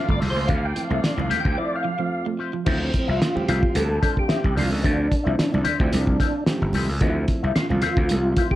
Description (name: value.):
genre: funk.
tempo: 110 BPM.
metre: 4/4.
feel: straight.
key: D minor.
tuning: A4 = 440 Hz.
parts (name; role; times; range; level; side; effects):
percussive tonewheel organ; melody; 0.0-8.6 s; C4 to G5; -26 LUFS; equal; chorus vibrato, slow rotary speaker.
clear horn section; second line; 0.0-2.4 s; A3 to D5; -35 LUFS; equal; none.
electric guitar with an envelope filter; accompaniment; 0.0-8.6 s; F4 to F5; -30 LUFS; left 9 dB; wah, phaser.
overdriven reed electric piano; stabs; 0.0-8.6 s; E3 to G4; -29 LUFS; right 2 dB; none.
electric guitar at the edge of break-up; riff; 0.1-2.6 s; F3 to C4; -31 LUFS; right 6 dB; phaser.
gritty slap bass; bass; 0.1-8.3 s; G1 to D2; -24 LUFS; equal; overdrive.
cloth-damped thuddy drum kit; drums; 0.1-8.6 s; crash cymbal, hi-hat, kick drum, snare drum; -23 LUFS; equal; none.
congas; percussion; 0.2-8.5 s; none; -31 LUFS; right 3 dB; none.
room: light reverb, small room reverb.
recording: dark, warm production.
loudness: -20 LUFS.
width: side -14 dB against mid.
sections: 0.0-2.7 A section; 2.7-8.6 B section.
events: tonewheel organ solo 0.0-2.7; break 1.6-2.7.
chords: 0.0 Dm9.